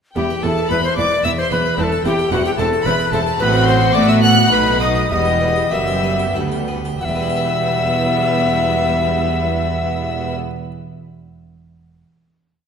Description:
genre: classical, baroque-style concerto movement with solo episodes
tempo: 88-112 BPM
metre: 3/4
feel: straight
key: E minor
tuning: A4 = 440 Hz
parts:
  - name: alto recorder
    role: melody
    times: 0.2-10.4 s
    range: F#4 to F#5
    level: -20 LUFS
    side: left 2 dB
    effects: none
  - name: rich chamber violin section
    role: melody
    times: 0.2-10.3 s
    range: F#5 to F#6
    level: -22 LUFS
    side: left 1 dB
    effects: none
  - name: warm chamber violin section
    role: second line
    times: 0.2-10.4 s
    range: B3 to F#4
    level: -24 LUFS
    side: left 3 dB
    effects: none
  - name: harpsichord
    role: accompaniment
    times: 0.2-10.7 s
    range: D2 to E5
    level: -27 LUFS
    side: equal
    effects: none
  - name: rich chamber viola section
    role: accompaniment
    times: 0.2-10.4 s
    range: G3 to C4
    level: -26 LUFS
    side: equal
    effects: none
  - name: rich studio double bass section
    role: bass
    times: 0.2-10.4 s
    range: E1 to A2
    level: -23 LUFS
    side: right 3 dB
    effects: none
  - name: rich symphonic cello section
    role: bass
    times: 0.2-10.4 s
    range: D2 to A3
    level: -23 LUFS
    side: right 2 dB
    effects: none
room: wet concert hall reverb, RT60 1.9 s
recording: minimal, uncompressed stereo recording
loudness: -14 LUFS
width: side -7 dB against mid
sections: 0.2-7.0 ritornello; 7.0-11.1 final chord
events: slowing down 2.6-7.0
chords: 0.2 E5; 1.8 Am/E; 3.4 F#dim/A; 4.5 B7; 5.1 Em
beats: | 0.16 0.70 1.24 | 1.78 2.32 2.86 | 3.40 3.95 4.51 | 5.10 5.71 6.35 | 7.01 7.70 8.38 | 9.05 9.73 10.41

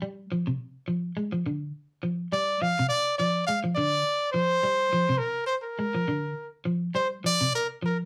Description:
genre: afrobeat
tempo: 104 BPM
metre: 4/4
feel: swing 56% on 16ths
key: Bb mixolydian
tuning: A4 = 440 Hz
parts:
  - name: electric guitar at the edge of break-up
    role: arpeggios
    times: 0.0-8.1 s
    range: C3 to Ab3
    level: -31 LUFS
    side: equal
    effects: none
  - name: bright trumpet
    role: melody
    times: 2.3-8.0 s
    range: Bb4 to F5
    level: -28 LUFS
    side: equal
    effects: none
room: wet studio ambience, RT60 0.5 s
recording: band playing live in one room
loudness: -27 LUFS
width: mono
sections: 0.0-8.1 A section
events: none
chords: 0.0 Bb (rootless)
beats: 0.00 | 0.58 1.16 1.74 2.32 | 2.90 3.47 4.05 4.63 | 5.21 5.79 6.37 6.94 | 7.52

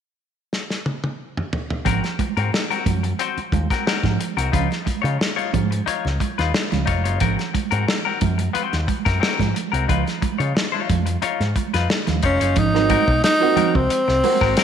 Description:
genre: funk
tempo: 90 BPM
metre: 4/4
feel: straight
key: Ab mixolydian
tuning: A4 = 440 Hz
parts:
  - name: warm soul drum kit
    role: drums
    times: 0.5-14.6 s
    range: hi-hat, kick drum, snare drum, toms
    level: -24 LUFS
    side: left 1 dB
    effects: none
  - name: semi-hollow electric guitar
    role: accompaniment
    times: 1.9-14.6 s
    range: C4 to Db5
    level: -25 LUFS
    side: left 10 dB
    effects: none
  - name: picked electric bass with an envelope filter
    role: bass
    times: 1.9-14.6 s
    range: F1 to Db3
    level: -22 LUFS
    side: equal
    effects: none
  - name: congas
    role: percussion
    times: 1.9-14.4 s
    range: none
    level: -26 LUFS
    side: right 13 dB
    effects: none
  - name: breathy tenor saxophone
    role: melody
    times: 12.3-14.6 s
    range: C4 to Eb4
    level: -18 LUFS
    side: equal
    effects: none
  - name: bright upright piano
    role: stabs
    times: 12.7-14.5 s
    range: Gb3 to Gb4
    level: -23 LUFS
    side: right 11 dB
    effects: none
room: moderate echo chamber reverb, RT60 1.9 s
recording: 1960s-style stereo with parts hard left and right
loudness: -18 LUFS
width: side -8 dB against mid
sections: 0.0-1.9 A section; 1.9-12.6 B section; 12.6-14.6 C section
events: drum fill 0.5-1.9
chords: 0.0 N.C.; 1.9 Ab9; 4.5 Db9; 7.2 Ab9; 9.9 Db9; 12.6 Ab9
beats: 0.52 1.19 | 1.86 2.53 3.19 3.86 | 4.53 5.20 5.87 6.54 | 7.21 7.88 8.55 9.22 | 9.89 10.56 11.23 11.90 | 12.57 13.23 13.90 14.57

